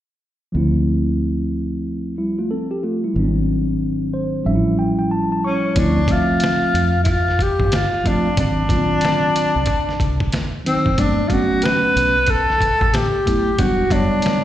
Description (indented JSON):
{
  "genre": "hip hop, jazz-hop",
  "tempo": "92 BPM",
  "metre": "4/4",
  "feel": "swing 62% on 16ths",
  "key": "unclear",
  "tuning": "A4 = 443 Hz",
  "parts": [
    { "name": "mellow tine electric piano", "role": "accompaniment", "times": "0.5-14.4 s", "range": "D#3 to C#6", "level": "-20 LUFS", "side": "equal", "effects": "slapback echo" },
    { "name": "deep dub fingered electric bass", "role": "bass", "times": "0.5-14.1 s", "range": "E1 to F2", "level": "-22 LUFS", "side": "equal", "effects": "none" },
    { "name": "breathy tenor saxophone", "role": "melody", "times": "5.5-14.4 s", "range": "B#3 to B4", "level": "-18 LUFS", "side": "left 1 dB", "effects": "slapback echo" },
    { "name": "trip hop sampler-style drum kit", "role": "drums", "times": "5.8-14.4 s", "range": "hi-hat, kick drum, snare drum", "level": "-22 LUFS", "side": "equal", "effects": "none" }
  ],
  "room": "light reverb",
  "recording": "live gig heard through the venue's PA, recital hall reverb",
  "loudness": "-16 LUFS",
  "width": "side -12 dB against mid",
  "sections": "0.5-5.8 A section; 5.8-14.4 B section",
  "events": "tine electric piano fill 3.8-5.8",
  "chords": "0.5 Dm9; 3.2 G#7#11; 4.5 A7b13; 5.8 Dm9; 8.4 G#7#11 (rootless); 11.0 Gmaj9; 13.6 Em9"
}